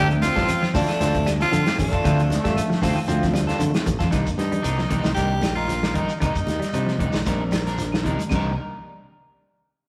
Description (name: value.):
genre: afrobeat.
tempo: 115 BPM.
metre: 4/4.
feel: straight.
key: C dorian.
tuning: A4 = 440 Hz.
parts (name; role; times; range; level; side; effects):
raspy tenor saxophone; melody; 0.0-7.2 s; D4 to G4; -28 LUFS; equal; none.
breathy alto saxophone; second line; 0.0-2.5 s; A3 to C4; -35 LUFS; equal; none.
mellow tine electric piano; accompaniment; 0.0-8.6 s; Eb3 to F4; -37 LUFS; equal; none.
semi-hollow electric guitar; arpeggios; 0.0-8.5 s; C3 to G3; -31 LUFS; equal; none.
electric guitar at the edge of break-up; stabs; 0.0-8.5 s; G3 to Bb4; -31 LUFS; equal; none.
modern bright fingered electric bass; bass; 0.0-8.6 s; A1 to D3; -28 LUFS; equal; none.
warm soul drum kit; drums; 0.1-8.4 s; crash cymbal, hi-hat, kick drum, snare drum; -30 LUFS; equal; none.
congas; percussion; 0.1-8.4 s; none; -32 LUFS; equal; none.
shekere; percussion; 0.1-8.4 s; none; -40 LUFS; equal; none.
claves; percussion; 0.5-8.4 s; none; -44 LUFS; equal; none.
clear trombone section; second line; 2.3-4.0 s; F3 to C4; -33 LUFS; equal; none.
room: wet stone room reverb, RT60 1.4 s.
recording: rough rehearsal-room recording, warm saturation.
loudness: -22 LUFS.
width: mono.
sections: 0.0-4.1 A section; 4.1-8.3 B section; 8.3-9.9 C section.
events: drum fill 3.1-4.1.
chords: 0.0 Dm7; 4.1 Cm9.